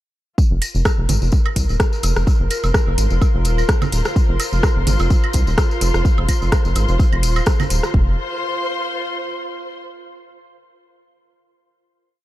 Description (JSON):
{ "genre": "minimal techno", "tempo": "127 BPM", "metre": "4/4", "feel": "swing 55% on 16ths", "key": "unclear", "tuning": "A4 = 440 Hz", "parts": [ { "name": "electronic kick drum", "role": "drums", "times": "0.4-8.0 s", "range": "none", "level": "-16 LUFS", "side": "equal", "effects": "none" }, { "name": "tambourine", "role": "percussion", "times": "0.4-7.9 s", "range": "none", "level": "-30 LUFS", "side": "left 4 dB", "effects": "none" }, { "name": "pulsing gated texture", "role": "texture", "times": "0.8-8.0 s", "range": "Bb4", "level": "-31 LUFS", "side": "left 1 dB", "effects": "chorus, built-in reverb, sidechain pumping" }, { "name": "warm studio string section", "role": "texture", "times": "0.4-9.8 s", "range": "F4 to C6", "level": "-26 LUFS", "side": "equal", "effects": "sidechain pumping" }, { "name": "rubbery square bass", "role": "bass", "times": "0.5-8.2 s", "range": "Eb1 to C2", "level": "-18 LUFS", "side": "equal", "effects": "sidechain pumping" }, { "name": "house drum kit", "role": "drums", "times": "0.6-7.9 s", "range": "hi-hat, rim click", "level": "-25 LUFS", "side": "equal", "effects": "none" }, { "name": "claves, woodblock and congas", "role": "percussion", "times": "0.6-7.7 s", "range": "none", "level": "-28 LUFS", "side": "right 6 dB", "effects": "diffuse ambient delay" } ], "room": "light reverb", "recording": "none", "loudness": "-15 LUFS", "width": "side -15 dB against mid", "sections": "0.4-7.9 groove; 7.9-9.8 final chord", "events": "fade-in on string section 0.4-7.9", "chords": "0.4 F5" }